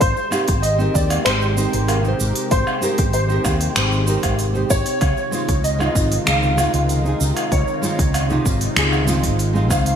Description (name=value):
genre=sunset chillout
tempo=96 BPM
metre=4/4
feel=straight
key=unclear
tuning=A4 = 438 Hz
part: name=dark concert grand piano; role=melody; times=0.0-10.0 s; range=Bb4 to F5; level=-24 LUFS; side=equal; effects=ensemble chorus, ping-pong delay
part: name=lush unison pad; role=sustained chords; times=0.1-10.0 s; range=C3 to G4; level=-26 LUFS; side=equal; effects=chorus, phaser, vintage 12-bit sampler grit
part: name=mellow fretless electric bass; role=bass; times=0.0-9.9 s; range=Ab1 to Eb2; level=-20 LUFS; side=equal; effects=analog chorus
part: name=electronic kick drum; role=drums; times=0.0-9.8 s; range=none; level=-22 LUFS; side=equal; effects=overdrive
part: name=smooth R&B drum kit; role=drums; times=0.0-10.0 s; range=finger snaps, hi-hat, shaker, woodblock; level=-23 LUFS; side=right 1 dB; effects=gated reverb
part: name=nylon-string guitar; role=accompaniment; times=0.3-10.0 s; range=C3 to C5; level=-24 LUFS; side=right 1 dB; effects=auto-pan, ping-pong delay
room=light reverb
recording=bright 1980s-style digital production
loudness=-16 LUFS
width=side -8 dB against mid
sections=0.0-10.0 A section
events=none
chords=0.0 Abmaj9; 5.0 Dbmaj9